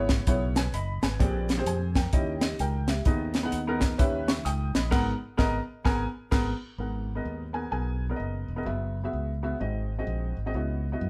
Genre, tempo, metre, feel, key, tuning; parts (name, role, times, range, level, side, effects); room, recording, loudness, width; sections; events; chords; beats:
uptempo gospel; 129 BPM; 4/4; swing 62% on 8ths; G# minor; A4 = 444 Hz
warm upright piano; accompaniment; 0.0-11.1 s; G#2 to D#6; -33 LUFS; equal
modern bright fingered electric bass; bass; 0.0-11.1 s; E1 to F#2; -33 LUFS; equal
tight funk drum kit; drums; 0.1-6.5 s; crash cymbal, hi-hat, kick drum, snare drum; -28 LUFS; equal
light reverb; band playing live in one room, lossy compression artefacts; -28 LUFS; mono
0.0-6.8 A section; 6.8-11.1 B section
band accent 4.9-6.8
0.0 C#m7; 1.2 A#13; 2.1 D#7b9; 3.1 G#m/D#; 4.0 D#7b9b13; 4.9 G#madd9; 6.8 G#m9; 8.7 F#9sus4; 9.6 G#7; 10.5 C#m11
0.27 0.74 | 1.20 1.67 2.13 2.60 | 3.06 3.53 3.99 4.46 | 4.92 5.39 5.86 6.32 | 6.79 7.26 7.73 8.19 | 8.66 9.13 9.60 10.07 | 10.54 11.01